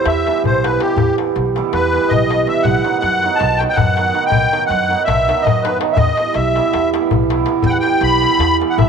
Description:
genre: balkan folk, Balkan wedding band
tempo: 324 BPM (eighths)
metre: 9/8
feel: straight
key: E harmonic minor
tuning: A4 = 441 Hz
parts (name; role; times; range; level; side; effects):
- musette accordion; melody; 0.0-8.9 s; G4 to B5; -17 LUFS; left 1 dB; none
- cimbalom; accompaniment; 0.0-8.9 s; D#3 to E4; -18 LUFS; right 9 dB; none
- upright bass; bass; 0.1-8.9 s; B1 to F#2; -22 LUFS; left 1 dB; none
- darbuka; percussion; 0.1-8.9 s; none; -21 LUFS; left 8 dB; none
room: moderate plate reverb, RT60 2.5 s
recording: 1960s-style stereo with parts hard left and right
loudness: -13 LUFS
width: side -6 dB against mid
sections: 0.0-8.9 A section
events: accordion solo 0.0-8.9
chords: 0.0 Em; 2.6 B; 6.0 Em

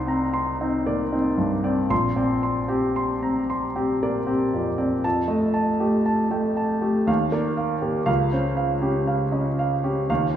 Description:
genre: classical, impressionist solo piano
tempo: 56-60 BPM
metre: 3/4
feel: rubato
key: unclear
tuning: A4 = 440 Hz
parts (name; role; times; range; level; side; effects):
- clear grand piano; solo; 0.0-10.4 s; Bb1 to C6; -21 LUFS; equal; none
room: wet recital hall reverb, RT60 1.5 s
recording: recorded in a church or concert hall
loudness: -21 LUFS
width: side -10 dB against mid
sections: 0.0-10.4 A section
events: none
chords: 0.0 Cmadd9; 1.9 Bb69; 5.0 F9; 7.1 Ebmaj9; 8.1 Dbmaj7#11

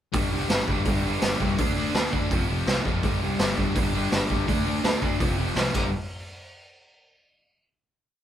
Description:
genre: punk rock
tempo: 166 BPM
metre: 4/4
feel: straight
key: unclear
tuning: A4 = 441 Hz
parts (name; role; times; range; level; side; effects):
- raw garage guitar; riff; 0.1-5.9 s; F2 to D4; -29 LUFS; right 4 dB; overdrive
- sludgy distorted guitar; riff; 0.1-5.9 s; F2 to D4; -30 LUFS; left 6 dB; overdrive
- fuzz picked electric bass; bass; 0.1-5.9 s; F1 to D2; -30 LUFS; equal; overdrive
- raw garage drum kit; drums; 0.1-5.8 s; crash cymbal, hi-hat, kick drum, snare drum; -25 LUFS; equal; none
room: light reverb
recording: band playing live in one room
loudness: -22 LUFS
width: side -10 dB against mid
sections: 0.1-5.9 verse; 5.9-7.4 final hit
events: drum fill 5.7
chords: 0.1 G5; 1.6 D5; 2.3 F5; 3.0 G5; 4.5 D5; 5.2 F5; 5.7 G5; 5.9 N.C.

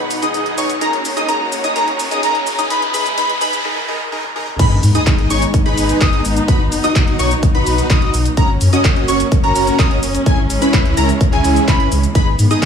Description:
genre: EDM, festival progressive house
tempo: 127 BPM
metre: 4/4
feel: straight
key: G# minor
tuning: A4 = 440 Hz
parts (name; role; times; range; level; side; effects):
- rich studio string section; sustained chords; 0.0-12.7 s; C#2 to F#5; -23 LUFS; equal; sidechain pumping
- riser, noise sweep and sub drop; sound effects; 0.0-6.5 s; none; -24 LUFS; left 1 dB; none
- big-room dance drum kit; drums; 0.1-12.7 s; crash cymbal, handclaps, hi-hat, ride cymbal, shaker, toms; -23 LUFS; left 1 dB; none
- plucky unison lead; arpeggios; 0.2-12.7 s; G#5 to D#6; -20 LUFS; equal; lush chorus, sidechain pumping, dub echo
- dense compressed supersaw; riff; 0.2-12.7 s; C#4 to D#5; -20 LUFS; equal; sidechain pumping, dub echo
- saturated sub bass; bass; 4.6-12.7 s; F#1 to G#2; -18 LUFS; equal; tube saturation, sidechain pumping
- electronic kick drum; drums; 4.6-12.7 s; none; -14 LUFS; equal; none
room: light reverb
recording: high-pass filter, small room reverb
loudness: -13 LUFS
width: side -7 dB against mid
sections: 0.0-4.6 A section; 4.6-12.7 B section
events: build-up 0.0-4.6; riser 0.0-3.6; filter sweep on supersaw synth 0.0-4.6; noise sweep 2.7-4.6; break 3.6-4.6; drum fill 4.2-4.6; drop 4.6-12.7; impact 4.6-6.5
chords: 0.0 B; 0.8 F#; 2.7 C#m; 3.6 D#5; 4.6 G#m; 6.5 B; 8.4 F#; 10.3 C#m; 12.2 G#m

